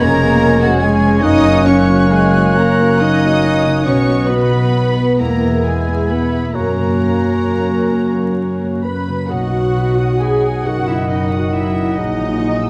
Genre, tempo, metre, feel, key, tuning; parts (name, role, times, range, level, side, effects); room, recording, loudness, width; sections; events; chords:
classical, slow romantic movement for symphony orchestra; 45 BPM (dotted quarters); 6/8; uneven beats, rubato; B major; A4 = 440 Hz
dark studio violin section; melody; 0.0-12.7 s; D#5 to E6; -30 LUFS; equal
bright concert flute; second line; 0.0-12.7 s; F#5 to G#6; -27 LUFS; equal
warm clarinet; second line; 0.0-12.7 s; C#4 to B4; -25 LUFS; equal
warm oboe; second line; 0.0-12.7 s; C#5 to E5; -28 LUFS; equal
warm studio violin section; second line; 0.0-12.7 s; F#4 to B5; -26 LUFS; equal
dark studio viola section; accompaniment; 0.0-12.7 s; E#3 to B4; -27 LUFS; equal
warm bassoon; accompaniment; 0.0-12.7 s; D#3 to C#4; -26 LUFS; equal
warm French horn section; sustained chords; 0.0-12.7 s; F#3 to E4; -23 LUFS; equal
concert harp; arpeggios; 0.0-12.7 s; E2 to F#5; -25 LUFS; equal
dark studio double bass section; bass; 0.0-12.7 s; E#1 to F#2; -22 LUFS; equal
rich studio cello section; bass; 0.0-12.7 s; F#2 to D#4; -23 LUFS; equal
moderate scoring stage reverb, RT60 1.8 s; vinyl crackle; -15 LUFS; mono
0.0-9.3 A section; 9.3-12.7 B section
0.0 C#7/E#; 1.2 F#; 3.9 B; 5.2 E; 6.5 F#; 9.3 B; 12.0 F#7/A#